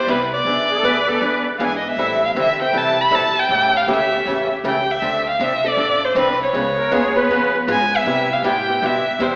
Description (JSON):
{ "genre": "acoustic string swing (jazz manouche)", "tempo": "158 BPM", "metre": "4/4", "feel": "swing 63% on 8ths", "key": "unclear", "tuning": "A4 = 439 Hz", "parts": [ { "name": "warm violin", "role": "melody", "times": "0.0-9.4 s", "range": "B4 to B5", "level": "-18 LUFS", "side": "equal", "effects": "none" }, { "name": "upright bass", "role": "bass", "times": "0.0-9.4 s", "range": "A1 to D3", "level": "-31 LUFS", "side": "equal", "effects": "none" }, { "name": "picked acoustic archtop guitar", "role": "accompaniment", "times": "0.1-9.3 s", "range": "C3 to A4", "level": "-20 LUFS", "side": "equal", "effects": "none" }, { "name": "musette accordion", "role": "second line", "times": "0.7-1.5, 6.8-7.6 s", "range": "G#4 to B4", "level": "-21 LUFS", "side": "right 1 dB", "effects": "none" } ], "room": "wet concert hall reverb, RT60 2.1 s", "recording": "recorded in a church or concert hall, AM radio sound", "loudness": "-15 LUFS", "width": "side -28 dB against mid", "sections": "0.0-9.4 A section", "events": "none", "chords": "0.5 E7; 2.0 Am7; 3.5 A7; 5.0 Dm7; 6.5 Db7; 8.1 Cmaj7", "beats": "0.07 | 0.46 0.84 1.22 1.60 | 1.98 2.36 2.74 3.12 | 3.50 3.88 4.26 4.64 | 5.02 5.40 5.78 6.16 | 6.54 6.92 7.30 7.68 | 8.06 8.44 8.82 9.20" }